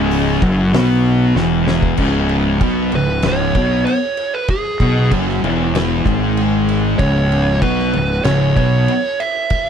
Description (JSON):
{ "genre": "stoner and doom metal", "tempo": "96 BPM", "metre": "4/4", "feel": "straight", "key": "C# minor", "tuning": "A4 = 442 Hz", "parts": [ { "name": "thick fuzz guitar", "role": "riff", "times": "0.0-8.9 s", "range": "C#2 to B3", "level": "-15 LUFS", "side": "left 1 dB", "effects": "distortion" }, { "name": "fuzz fingered electric bass", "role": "bass", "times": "0.0-8.9 s", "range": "C#1 to B1", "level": "-20 LUFS", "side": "equal", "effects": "overdrive, tube saturation" }, { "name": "oversized low-tuned drum kit", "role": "drums", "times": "0.1-9.7 s", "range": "crash cymbal, hi-hat, kick drum, snare drum", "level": "-22 LUFS", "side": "equal", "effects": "none" }, { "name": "fuzz lead guitar", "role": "melody", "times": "3.0-9.7 s", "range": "G#4 to E5", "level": "-20 LUFS", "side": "right 4 dB", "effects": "distortion" } ], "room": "little or no reverb", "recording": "dry, close 1970s-style studio recording", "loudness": "-13 LUFS", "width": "side -8 dB against mid", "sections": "0.0-2.0 A section; 2.0-9.7 B section", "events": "drum fill 1.4-2.0", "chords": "0.0 C#m" }